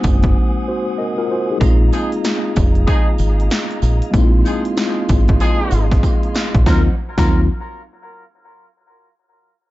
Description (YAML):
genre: hip hop, boom-bap hip-hop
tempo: 95 BPM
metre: 4/4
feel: swing 63% on 16ths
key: Eb dorian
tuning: A4 = 438 Hz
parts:
  - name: mellow tine electric piano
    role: accompaniment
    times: 0.0-7.5 s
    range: Gb3 to Eb5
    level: -21 LUFS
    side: left 1 dB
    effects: medium stereo tremolo, cassette tape, high-pass filter, low-pass filter
  - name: percussive tonewheel organ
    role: sustained chords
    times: 0.0-7.0 s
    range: F3 to Eb6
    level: -28 LUFS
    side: right 1 dB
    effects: fast rotary speaker, high-pass filter, low-pass filter
  - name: deep dub fingered electric bass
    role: bass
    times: 0.0-7.5 s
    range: F1 to Eb2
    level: -16 LUFS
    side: equal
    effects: none
  - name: big-room dance drum kit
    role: drums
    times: 0.0-7.3 s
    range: hi-hat, kick drum, snare drum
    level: -16 LUFS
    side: equal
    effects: overdrive
  - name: sleigh bells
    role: percussion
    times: 0.0-7.5 s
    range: none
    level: -39 LUFS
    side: right 12 dB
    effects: none
  - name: warm horn section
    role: stabs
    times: 1.9-7.4 s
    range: F3 to Bb4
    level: -26 LUFS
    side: equal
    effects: high-pass filter, low-pass filter, analog delay
room: little or no reverb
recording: dark, warm production, nothing above 7.7 kHz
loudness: -14 LUFS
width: side -17 dB against mid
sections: 0.0-1.6 A section; 1.6-6.7 B section; 6.7-9.2 C section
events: break 0.3-1.6; drum fill 6.0-6.7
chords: 0.0 Ab7; 1.6 Bb7sus4; 6.7 Ebm69